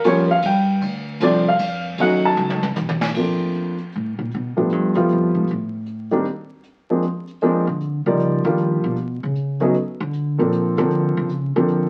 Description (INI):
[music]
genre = jazz piano trio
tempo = 155 BPM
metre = 3/4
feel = swing 64% on 8ths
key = Bb major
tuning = A4 = 439 Hz
[part]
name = warm upright piano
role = melody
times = 0.0-11.9 s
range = Eb3 to A5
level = -20 LUFS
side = equal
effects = none
[part]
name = upright bass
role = bass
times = 0.0-11.9 s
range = B1 to Eb3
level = -26 LUFS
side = equal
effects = none
[part]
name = jazz brush drum kit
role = drums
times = 0.0-11.8 s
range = crash cymbal, hi-hat, kick drum, ride cymbal, snare drum, toms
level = -30 LUFS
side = equal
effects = none
[sound]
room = moderate studio reverb, RT60 0.9 s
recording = very old 78 rpm record, vinyl crackle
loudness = -20 LUFS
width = mono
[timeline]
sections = 0.0-3.2 A section; 3.2-11.9 A section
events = upright piano solo 0.0-3.2; drum fill 2.4-3.2; upright bass solo 3.2-11.9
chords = 0.0 Eb9 (rootless); 0.8 Dm7; 2.0 B9; 3.2 Bbmaj7; 4.3 G7; 5.5 N.C.; 6.6 Bb7; 7.8 Ebmaj9; 9.0 Bsus2; 10.1 Bbmaj7